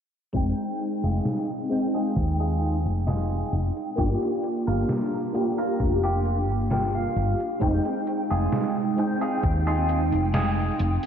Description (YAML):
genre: vaporwave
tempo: 66 BPM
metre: 4/4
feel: straight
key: F dorian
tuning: A4 = 440 Hz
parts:
  - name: FM electric piano with soft pad layer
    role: accompaniment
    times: 0.3-11.1 s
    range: Ab3 to G5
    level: -26 LUFS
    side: equal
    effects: phaser, ensemble chorus, tape echo
  - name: clean electric guitar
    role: riff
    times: 0.3-10.8 s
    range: Bb3 to G5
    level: -32 LUFS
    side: right 2 dB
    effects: wide subtle chorus, low-pass filter, tape echo
  - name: woody fretless electric bass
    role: bass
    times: 0.3-11.0 s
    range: F1 to Eb2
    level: -25 LUFS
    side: equal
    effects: analog chorus
  - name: detuned 8-bit digital drum machine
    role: drums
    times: 0.3-11.1 s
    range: hi-hat, snare drum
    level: -31 LUFS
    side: equal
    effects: none
  - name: electronic kick drum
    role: drums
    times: 0.3-9.6 s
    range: none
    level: -27 LUFS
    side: equal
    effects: none
room: wet lush hall reverb, RT60 2.4 s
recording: dreamy mix soaked in reverb, low-pass filter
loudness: -22 LUFS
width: side -8 dB against mid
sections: 0.3-11.1 A section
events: filter sweep on clean electric guitar 0.3-11.1; filter sweep 0.3-11.1; clean electric guitar fill 6.3-7.6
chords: 0.3 Fm7; 4.0 Gm7; 7.6 Fm7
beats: | 0.34 1.25 2.16 3.07 | 3.98 4.89 5.80 6.71 | 7.62 8.53 9.44 10.34